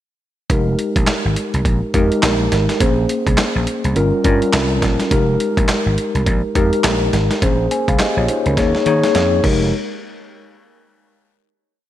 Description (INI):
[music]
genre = R&B, new jack swing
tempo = 104 BPM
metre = 4/4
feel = swing 60% on 16ths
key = F minor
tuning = A4 = 440 Hz
[part]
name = mellow tine electric piano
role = accompaniment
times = 0.5-9.7 s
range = G3 to Ab5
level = -18 LUFS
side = left 1 dB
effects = medium stereo tremolo
[part]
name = vintage slap bass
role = bass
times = 0.5-9.7 s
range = F1 to Eb3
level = -19 LUFS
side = right 1 dB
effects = none
[part]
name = dusty soul sampler-style drum kit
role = drums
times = 0.5-9.6 s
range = crash cymbal, handclaps, hi-hat, kick drum, snare drum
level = -19 LUFS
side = right 1 dB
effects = overdrive
[sound]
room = light reverb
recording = none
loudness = -14 LUFS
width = side -12 dB against mid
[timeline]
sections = 0.5-9.7 verse; 9.7-11.9 final hit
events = drum fill 8.6-9.7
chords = 0.5 Fm11; 2.8 Bbm9; 4.0 Gm7b5; 5.1 Fm11; 7.4 Bbm9; 8.6 Eb7sus4; 9.4 Fm11; 9.7 N.C.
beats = | 0.49 1.07 1.65 2.23 | 2.80 3.38 3.96 4.53 | 5.11 5.69 6.26 6.84 | 7.42 8.00 8.57 9.15 | 9.73